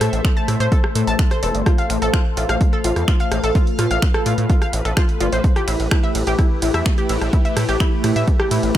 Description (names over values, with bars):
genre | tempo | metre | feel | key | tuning
melodic techno | 127 BPM | 4/4 | straight | unclear | A4 = 440 Hz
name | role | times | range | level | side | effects
sweeping resonant pad | sustained chords | 0.0-8.8 s | A3 to F5 | -25 LUFS | left 2 dB | chorus, sidechain pumping
analog pluck | arpeggios | 0.0-8.8 s | E4 to A5 | -23 LUFS | equal | chorus, cassette tape, sidechain pumping, digital delay
gritty driven synth bass | bass | 0.0-8.7 s | E1 to A2 | -20 LUFS | equal | sidechain pumping
punchy analog drum machine | drums | 0.0-8.8 s | finger snaps, hi-hat, ride cymbal, rim click | -26 LUFS | right 1 dB | sidechain pumping on hats, sidechain pumping on cymbals
electronic kick drum | drums | 0.2-8.8 s | none | -17 LUFS | equal | none
room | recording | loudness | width
little or no reverb | none | -16 LUFS | side -12 dB against mid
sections
0.0-8.8 A section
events
none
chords
0.0 Am; 1.7 F/A; 5.4 Em/A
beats
0.24 0.72 1.19 | 1.66 2.13 2.61 3.08 | 3.55 4.03 4.50 4.97 | 5.44 5.91 6.39 6.86 | 7.33 7.80 8.28 8.75